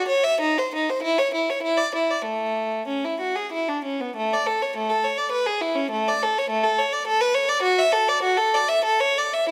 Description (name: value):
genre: classical, baroque-style suite movement for unaccompanied violin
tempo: 87-106 BPM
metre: 3/4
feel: rubato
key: A major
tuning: A4 = 440 Hz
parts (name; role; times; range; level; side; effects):
- clear violin; solo; 0.0-9.5 s; A3 to E5; -23 LUFS; equal; none
room: moderate recital hall reverb, RT60 1.7 s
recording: close, detailed microphones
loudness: -23 LUFS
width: mono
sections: 0.0-4.1 A section; 4.1-9.5 B section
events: none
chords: none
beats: | 0.39 1.00 1.60 | 2.23 2.86 3.49 | 4.13 4.73 5.31 | 5.92 6.50 7.07 | 7.64 8.23 8.83 | 9.48